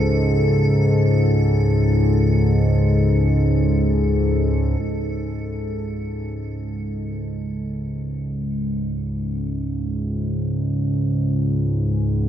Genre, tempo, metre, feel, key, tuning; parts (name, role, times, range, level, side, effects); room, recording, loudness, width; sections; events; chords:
dark ambient drone; free time; A4 = 440 Hz
analog drone; drone; 0.0-12.3 s; C#2 to G#2; -18 LUFS; equal; chorus
icy glass pad; texture; 0.0-4.8 s; A4; -30 LUFS; left 1 dB; chorus, built-in reverb
wet cathedral reverb, RT60 6.2 s; cassette tape; -18 LUFS; side -10 dB against mid
0.0-4.8 A section; 4.8-12.3 B section
fade-in on synth drone 4.8-12.3
0.0 Amaj7/C#